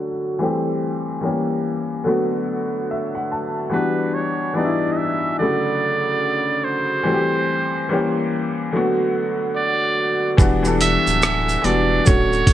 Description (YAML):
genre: lo-fi hip hop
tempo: 72 BPM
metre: 4/4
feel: swing 61% on 16ths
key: unclear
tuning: A4 = 444 Hz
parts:
  - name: bright upright piano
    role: accompaniment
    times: 0.0-12.5 s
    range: C#3 to A5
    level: -20 LUFS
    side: left 1 dB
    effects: cassette tape, low-pass filter
  - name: trumpet with metal mute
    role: melody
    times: 3.7-12.5 s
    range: B4 to E5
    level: -22 LUFS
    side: right 3 dB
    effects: low-pass filter, analog delay
  - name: saturated sub bass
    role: bass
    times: 10.4-12.5 s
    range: D1 to E1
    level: -23 LUFS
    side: right 1 dB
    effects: none
  - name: dusty soul sampler-style drum kit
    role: drums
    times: 10.4-12.5 s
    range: hi-hat, kick drum, rim click, shaker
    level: -16 LUFS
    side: right 1 dB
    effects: none
room: moderate echo chamber reverb, RT60 2.3 s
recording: none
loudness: -18 LUFS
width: side -12 dB against mid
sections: 0.0-10.4 A section; 10.4-12.5 B section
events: break 0.0-3.7; filter sweep 0.0-10.4; upright piano fill 2.5-3.7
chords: 0.4 C6; 1.2 A#dim7; 2.1 Bm7/D; 3.7 Em9; 5.4 Dmaj7; 7.1 C6; 7.9 A#dim7; 8.7 Bm7/D; 10.4 Em9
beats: | 0.39 1.22 2.05 2.88 | 3.72 4.55 5.38 6.22 | 7.05 7.88 8.72 9.55 | 10.38 11.22 12.05